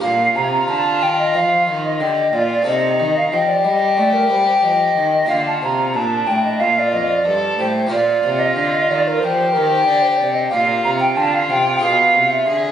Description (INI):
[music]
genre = classical, baroque-style sonata movement with continuo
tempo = 92 BPM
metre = 4/4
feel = straight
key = Bb major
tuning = A4 = 440 Hz
[part]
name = warm violin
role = melody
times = 0.0-12.7 s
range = D4 to A4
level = -19 LUFS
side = left 3 dB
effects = none
[part]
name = hollow concert flute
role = second line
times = 0.0-12.6 s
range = Bb4 to Bb5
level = -17 LUFS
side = right 2 dB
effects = none
[part]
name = harpsichord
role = accompaniment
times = 0.0-12.7 s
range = F2 to Bb4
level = -27 LUFS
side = left 1 dB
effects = none
[part]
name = rich cello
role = bass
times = 0.0-12.7 s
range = F2 to A3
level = -24 LUFS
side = right 1 dB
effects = none
[sound]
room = wet recital hall reverb, RT60 1.4 s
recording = recorded on a phone in the room, studio reverb, compression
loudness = -14 LUFS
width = side -9 dB against mid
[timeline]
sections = 0.0-12.7 A section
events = none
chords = 0.0 Bb; 2.7 F7/C; 5.3 Bb; 10.5 Gm7/Bb; 11.8 Bdim7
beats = | 0.03 0.69 1.35 2.01 | 2.66 3.32 3.98 4.63 | 5.29 5.95 6.61 7.26 | 7.92 8.57 9.22 9.87 | 10.52 11.17 11.82 12.47